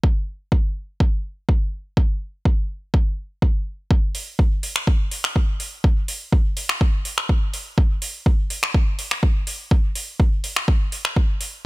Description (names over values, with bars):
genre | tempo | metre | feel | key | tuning
techno | 124 BPM | 4/4 | straight | none | none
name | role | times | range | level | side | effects
electronic kick drum | drums | 0.0-11.3 s | none | -18 LUFS | equal | overdrive
deep house drum kit | drums | 4.1-11.5 s | finger snaps, hi-hat | -25 LUFS | equal | overdrive
room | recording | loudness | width
digital ambience | none | -19 LUFS | side -21 dB against mid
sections
0.0-3.9 A section; 3.9-11.7 B section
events
none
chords
none